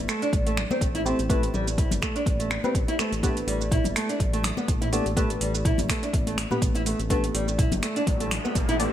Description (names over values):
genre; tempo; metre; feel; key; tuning
afro house; 124 BPM; 4/4; swing 55% on 16ths; unclear; A4 = 437 Hz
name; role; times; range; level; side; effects
deep mellow chord stab; stabs; 0.0-8.9 s; B3 to D5; -32 LUFS; left 2 dB; chorus, sidechain pumping, dub echo
smooth synth bass; bass; 0.0-8.9 s; G1 to A1; -31 LUFS; equal; sidechain pumping
nylon-string guitar; arpeggios; 0.1-8.9 s; G3 to E4; -28 LUFS; right 1 dB; sidechain pumping, dub echo
afro-pop drum kit; drums; 0.1-8.9 s; finger snaps, hi-hat, shaker, toms; -31 LUFS; right 1 dB; none
congas; percussion; 0.1-8.9 s; none; -34 LUFS; left 4 dB; none
electronic kick drum; drums; 0.3-8.7 s; none; -25 LUFS; equal; none
riser; sound effects; 7.8-8.9 s; none; -35 LUFS; equal; none
room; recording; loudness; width
little or no reverb; none; -22 LUFS; side -11 dB against mid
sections
0.0-8.9 A section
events
riser 7.8-8.9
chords
0.0 Am9; 3.2 G